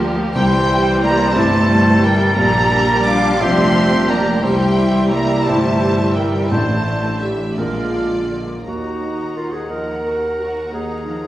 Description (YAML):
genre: cinematic, emotional film score for orchestra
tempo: 58 BPM (dotted quarters)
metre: 6/8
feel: rubato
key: unclear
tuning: A4 = 440 Hz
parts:
  - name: rich studio violin section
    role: second line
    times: 0.0-11.3 s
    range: G3 to Gb5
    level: -28 LUFS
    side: equal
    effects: none
  - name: warm oboe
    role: second line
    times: 0.0-8.1 s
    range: G4 to E5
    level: -23 LUFS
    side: right 1 dB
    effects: none
  - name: rich studio viola section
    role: accompaniment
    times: 0.0-11.3 s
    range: D3 to Gb4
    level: -24 LUFS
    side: left 1 dB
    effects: none
  - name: warm baby grand piano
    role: accompaniment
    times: 0.0-11.3 s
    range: A1 to Eb5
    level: -24 LUFS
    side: equal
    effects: none
  - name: warm French horn section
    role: sustained chords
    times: 0.0-8.3 s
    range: E3 to F4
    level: -22 LUFS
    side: equal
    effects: none
  - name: rich studio cello section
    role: bass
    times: 0.0-11.3 s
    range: Eb2 to D4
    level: -22 LUFS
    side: equal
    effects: none
  - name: rich studio double bass section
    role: bass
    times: 0.0-11.3 s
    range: F1 to Eb2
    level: -22 LUFS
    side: equal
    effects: none
  - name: mellow concert flute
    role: second line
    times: 0.3-8.6 s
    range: F4 to F5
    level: -24 LUFS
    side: equal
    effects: none
  - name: bright studio violin section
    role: melody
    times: 0.4-11.3 s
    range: D5 to D6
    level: -24 LUFS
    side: equal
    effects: none
  - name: timpani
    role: percussion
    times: 6.5-7.5 s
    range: A2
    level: -28 LUFS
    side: left 1 dB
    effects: none
  - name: clear clarinet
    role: second line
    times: 8.7-11.3 s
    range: F4 to Bb4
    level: -24 LUFS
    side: equal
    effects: none
room: wet scoring stage reverb, RT60 1.6 s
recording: vinyl crackle, small room reverb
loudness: -14 LUFS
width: side -14 dB against mid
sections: 0.0-8.7 A section; 8.7-11.3 B section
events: none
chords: 0.4 C; 2.4 Bb6; 4.4 C; 6.5 Asus4; 7.6 Bb7; 8.7 Ebmadd9